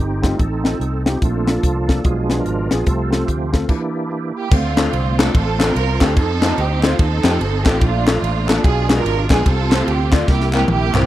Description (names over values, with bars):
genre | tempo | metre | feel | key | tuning
uptempo gospel | 146 BPM | 4/4 | swing 62% on 8ths | F major | A4 = 440 Hz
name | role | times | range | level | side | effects
bright tonewheel organ | sustained chords | 0.0-11.1 s | E3 to C6 | -26 LUFS | right 4 dB | fast rotary speaker, chorus vibrato
mellow French horn section | sustained chords | 0.0-3.7 s | F3 to F4 | -33 LUFS | right 1 dB | none
fingered electric bass | bass | 0.0-11.1 s | G1 to F2 | -20 LUFS | equal | none
warm upright piano | accompaniment | 0.2-11.0 s | Bb2 to D5 | -22 LUFS | left 3 dB | none
crisp fusion drum kit | drums | 0.2-11.1 s | crash cymbal, hi-hat, kick drum, ride cymbal, snare drum, toms | -17 LUFS | left 1 dB | none
warm studio string section | melody | 4.4-11.1 s | A3 to Bb4 | -21 LUFS | right 5 dB | none
group handclap | percussion | 4.8-11.0 s | none | -27 LUFS | left 3 dB | none
room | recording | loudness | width
small room ambience | dry, close 1970s-style studio recording | -15 LUFS | side -14 dB against mid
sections
0.0-4.5 A section; 4.5-11.1 B section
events
tonewheel organ solo 0.0-4.5; drum fill 10.3-11.1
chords
0.0 F7; 1.2 Bbmaj7; 2.0 Bdim7; 2.9 F/C; 3.7 Em7b5; 4.5 Dm7; 6.2 F7; 7.8 Bbmaj7; 8.6 Bdim7; 9.5 F/C; 10.3 C7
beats
0.39 0.80 | 1.21 1.63 2.04 2.46 | 2.87 3.28 3.69 4.11 | 4.52 4.93 5.34 5.75 | 6.17 6.58 6.99 7.40 | 7.81 8.22 8.63 9.04 | 9.46 9.87 10.28 10.69